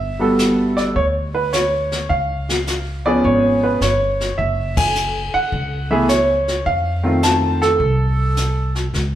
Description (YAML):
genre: jazz piano trio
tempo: 105 BPM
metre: 4/4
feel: swing 68% on 8ths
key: unclear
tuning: A4 = 439 Hz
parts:
  - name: warm grand piano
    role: melody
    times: 0.0-8.7 s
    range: Eb3 to A5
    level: -17 LUFS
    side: right 1 dB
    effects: none
  - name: upright bass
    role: bass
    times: 0.0-9.2 s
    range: F#1 to F2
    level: -22 LUFS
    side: equal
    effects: none
  - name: jazz brush drum kit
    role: drums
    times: 0.4-9.2 s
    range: brushed snare drum, hi-hat, kick drum, ride cymbal, snare drum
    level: -24 LUFS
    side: left 2 dB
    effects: none
room: wet large studio reverb, RT60 1.4 s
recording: band playing live in one room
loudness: -16 LUFS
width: side -12 dB against mid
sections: 0.0-8.9 A section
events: band accent 4.7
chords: 0.0 Gmaj9; 2.1 C#7; 4.4 F#7sus2; 6.7 F7